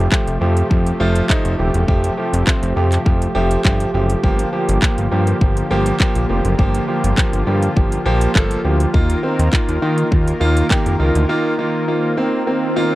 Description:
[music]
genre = dance-pop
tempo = 102 BPM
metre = 4/4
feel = straight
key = unclear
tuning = A4 = 440 Hz
[part]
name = clear concert grand piano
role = accompaniment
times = 0.0-12.9 s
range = Eb3 to A4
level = -19 LUFS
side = right 1 dB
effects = sidechain pumping
[part]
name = warm analog pad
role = sustained chords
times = 0.0-12.9 s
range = C3 to Bb4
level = -24 LUFS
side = equal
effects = chorus, tremolo, sidechain pumping
[part]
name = fat analog bass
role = bass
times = 0.0-11.3 s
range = Eb1 to Eb3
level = -17 LUFS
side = equal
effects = sidechain pumping
[part]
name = house drum kit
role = drums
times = 0.1-11.3 s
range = handclaps, hi-hat, kick drum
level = -17 LUFS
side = equal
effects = none
[part]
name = swell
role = sound effects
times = 11.9-12.9 s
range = none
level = -26 LUFS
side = left 3 dB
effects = none
[sound]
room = little or no reverb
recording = dry, close 1970s-style studio recording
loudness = -14 LUFS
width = side -17 dB against mid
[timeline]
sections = 0.0-12.9 A section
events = break 11.3-12.9; swell 11.9-12.9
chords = 0.0 Fadd9; 4.2 Gm7; 8.9 Ebsus2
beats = 0.12 0.71 1.29 | 1.88 2.47 3.06 3.65 | 4.24 4.82 5.41 6.00 | 6.59 7.18 7.76 8.35 | 8.94 9.53 10.12 10.71 | 11.29 11.88 12.47

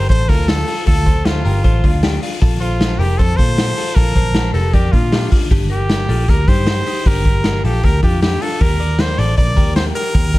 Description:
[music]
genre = jangly indie pop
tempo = 155 BPM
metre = 4/4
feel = straight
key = Bb major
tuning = A4 = 440 Hz
[part]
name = brilliant trumpet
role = melody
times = 0.0-10.4 s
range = F4 to D5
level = -22 LUFS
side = right 1 dB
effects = plate reverb
[part]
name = direct-recorded clean electric guitar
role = arpeggios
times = 0.0-10.4 s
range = D4 to A5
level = -25 LUFS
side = left 6 dB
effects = spring reverb, plate reverb
[part]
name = vintage muted picked electric bass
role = bass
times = 0.0-10.4 s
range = F1 to Bb2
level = -17 LUFS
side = equal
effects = none
[part]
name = raw garage drum kit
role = drums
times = 0.1-10.4 s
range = hi-hat, kick drum, snare drum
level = -15 LUFS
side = equal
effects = none
[sound]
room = little or no reverb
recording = none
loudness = -13 LUFS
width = side -18 dB against mid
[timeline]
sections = 0.0-10.4 A section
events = none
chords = 0.0 Dm7; 2.4 Bbmaj7; 5.5 Gm7; 8.6 Ebmaj7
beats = 0.10 0.48 | 0.87 1.26 1.64 2.03 | 2.42 2.80 3.19 3.58 | 3.96 4.35 4.74 5.12 | 5.51 5.90 6.28 6.67 | 7.06 7.44 7.83 8.22 | 8.61 8.99 9.38 9.77 | 10.15

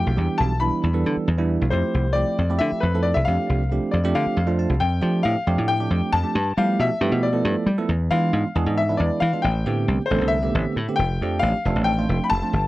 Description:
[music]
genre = electric jazz fusion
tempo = 272 BPM (eighths)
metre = 7/8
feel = straight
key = F lydian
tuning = A4 = 441 Hz
[part]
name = clear grand piano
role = melody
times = 0.0-12.7 s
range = B4 to B5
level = -25 LUFS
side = left 3 dB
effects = none
[part]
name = barky tine electric piano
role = accompaniment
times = 0.0-12.5 s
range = D3 to A5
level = -25 LUFS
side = right 4 dB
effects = phaser
[part]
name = dry thumbed slap bass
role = bass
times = 0.0-12.7 s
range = F1 to G3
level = -22 LUFS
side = equal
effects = none
[sound]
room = light reverb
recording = dry, close 1970s-style studio recording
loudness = -19 LUFS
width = side -17 dB against mid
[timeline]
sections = 0.0-4.8 A section; 4.8-12.7 B section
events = tine electric piano fill 4.1-4.8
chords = 0.2 Em7; 1.7 Fmaj9; 3.3 F69; 6.4 G13; 7.9 E7b9; 9.4 Am11; 11.0 F69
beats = | 0.17 0.39 0.61 0.83 1.06 1.28 1.50 | 1.72 1.94 2.16 2.38 2.60 2.82 3.04 | 3.27 3.48 3.71 3.93 4.15 4.37 4.59 | 4.81 5.03 5.25 5.47 5.69 5.91 6.13 | 6.35 6.58 6.79 7.02 7.24 7.46 7.68 | 7.90 8.12 8.34 8.56 8.78 9.00 9.22 | 9.44 9.66 9.88 10.10 10.32 10.54 10.77 | 10.99 11.21 11.43 11.65 11.87 12.09 12.31 | 12.53

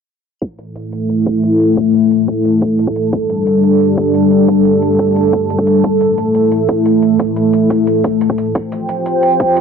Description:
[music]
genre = dark technical drum and bass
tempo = 177 BPM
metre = 4/4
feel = straight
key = A minor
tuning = A4 = 440 Hz
[part]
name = dark analog pad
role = sustained chords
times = 0.8-9.6 s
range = G3 to G5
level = -11 LUFS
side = equal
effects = chorus, sidechain pumping
[part]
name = electronic hi-hat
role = drums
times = 0.4-9.6 s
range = none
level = -37 LUFS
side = right 1 dB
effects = none
[part]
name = electronic kick drum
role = drums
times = 0.4-9.5 s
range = none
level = -18 LUFS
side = equal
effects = overdrive, high-pass filter on kick
[sound]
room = wet lush hall reverb, RT60 1.6 s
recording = dense, heavily limited modern master, low-pass filter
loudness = -11 LUFS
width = side -6 dB against mid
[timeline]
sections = 0.4-9.6 A section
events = filter sweep 0.4-9.6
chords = 0.4 A5; 3.1 G5; 5.8 A5; 8.6 F5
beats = | 0.42 0.75 1.09 1.43 | 1.77 2.11 2.45 2.79 | 3.13 3.47 3.81 4.14 | 4.48 4.82 5.16 5.50 | 5.84 6.18 6.52 6.86 | 7.20 7.53 7.87 8.21 | 8.55 8.89 9.23 9.57

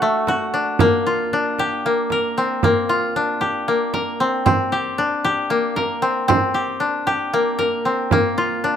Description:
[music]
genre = contemporary instrumental, chamber music in an uneven meter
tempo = 230 BPM (eighths)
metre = 7/8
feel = straight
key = G minor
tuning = A4 = 441 Hz
[part]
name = koto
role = arpeggios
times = 0.0-8.8 s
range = A3 to Bb4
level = -18 LUFS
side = left 2 dB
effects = none
[part]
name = frame drum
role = percussion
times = 0.3-8.8 s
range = none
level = -22 LUFS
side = right 6 dB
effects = none
[sound]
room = light reverb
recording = close, detailed microphones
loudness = -17 LUFS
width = side -8 dB against mid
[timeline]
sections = 0.8-8.8 A section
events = none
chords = 0.0 D; 0.8 Gm7; 4.5 Csus2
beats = 0.01 0.27 0.53 | 0.80 1.06 1.32 1.58 1.84 2.10 2.37 | 2.63 2.89 3.15 3.41 3.67 3.94 4.20 | 4.46 4.72 4.98 5.24 5.50 5.77 6.03 | 6.29 6.55 6.81 7.07 7.33 7.59 7.86 | 8.12 8.38 8.64

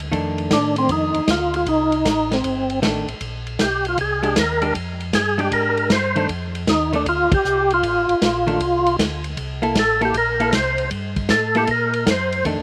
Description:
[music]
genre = soul jazz organ trio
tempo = 156 BPM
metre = 4/4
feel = swing 66% on 8ths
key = F mixolydian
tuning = A4 = 441 Hz
[part]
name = mellow tonewheel organ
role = bass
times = 0.0-12.6 s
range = G1 to Bb2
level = -30 LUFS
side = equal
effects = slow rotary speaker
[part]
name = vintage drum kit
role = drums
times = 0.0-12.6 s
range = hi-hat, kick drum, ride cymbal, snare drum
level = -26 LUFS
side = equal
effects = none
[part]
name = vintage hollow-body jazz guitar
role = accompaniment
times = 0.1-12.6 s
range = Eb3 to A4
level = -25 LUFS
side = equal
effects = slapback echo
[part]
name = percussive tonewheel organ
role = melody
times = 0.5-12.4 s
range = C4 to C5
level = -21 LUFS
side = equal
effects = slow rotary speaker, overdrive, chorus vibrato, slapback echo
[sound]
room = little or no reverb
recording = recorded outdoors, with no room sound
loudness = -20 LUFS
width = mono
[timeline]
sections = 0.0-12.6 A section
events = band accent 7.3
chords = 0.1 F13; 3.2 Bb13; 6.3 F13; 9.4 C6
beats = | 0.12 0.51 0.89 1.28 | 1.66 2.05 2.44 2.82 | 3.21 3.59 3.98 4.36 | 4.75 5.13 5.52 5.90 | 6.29 6.67 7.06 7.45 | 7.83 8.22 8.60 8.99 | 9.37 9.76 10.14 10.53 | 10.91 11.30 11.69 12.07 | 12.46

